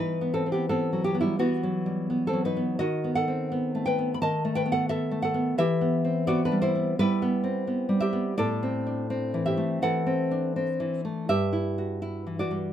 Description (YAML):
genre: romantic piece for solo classical guitar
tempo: 85 BPM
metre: 4/4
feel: uneven beats, rubato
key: E minor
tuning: A4 = 441 Hz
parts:
  - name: nylon-string guitar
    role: solo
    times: 0.0-12.7 s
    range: G2 to B5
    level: -24 LUFS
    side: equal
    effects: none
room: light reverb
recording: minimal, uncompressed stereo recording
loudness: -24 LUFS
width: side -10 dB against mid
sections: 0.0-12.7 A section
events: none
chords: 0.0 B/E; 2.8 B7/D#; 5.6 Em; 8.4 Am; 11.3 Em/G